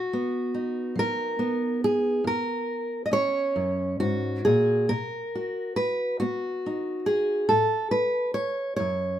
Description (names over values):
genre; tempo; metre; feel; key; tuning
folk, solo fingerstyle acoustic guitar; 46 BPM (dotted quarters); 6/8; rubato; unclear; A4 = 438 Hz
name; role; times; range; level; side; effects
fingerpicked steel-string acoustic guitar; solo; 0.0-9.2 s; F#2 to D#5; -24 LUFS; equal; none
room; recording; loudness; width
moderate stone room reverb, RT60 1.0 s; band playing live in one room; -24 LUFS; side -11 dB against mid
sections
0.0-4.9 A section; 4.9-9.2 B section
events
none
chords
0.0 B; 2.3 F#; 4.9 Bmaj7; 7.5 F#m